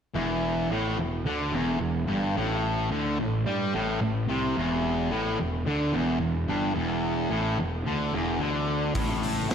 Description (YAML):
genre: blues rock power trio and southern rock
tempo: 109 BPM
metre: 4/4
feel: straight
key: unclear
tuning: A4 = 440 Hz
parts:
  - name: fuzz guitar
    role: riff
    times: 0.1-9.5 s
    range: E2 to G3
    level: -26 LUFS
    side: equal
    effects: distortion, slapback echo
  - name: fuzz picked electric bass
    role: bass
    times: 0.1-9.5 s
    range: E1 to G2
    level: -32 LUFS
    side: equal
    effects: overdrive
  - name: raw garage drum kit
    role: drums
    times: 8.9-9.5 s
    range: hi-hat, kick drum, snare drum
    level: -29 LUFS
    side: equal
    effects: none
room: wet concert hall reverb, RT60 2.3 s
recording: big arena sound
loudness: -25 LUFS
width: side -7 dB against mid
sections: 0.2-9.5 A section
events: none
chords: 0.2 Emadd11; 2.4 Amadd11; 4.6 E7(no3); 9.0 N.C.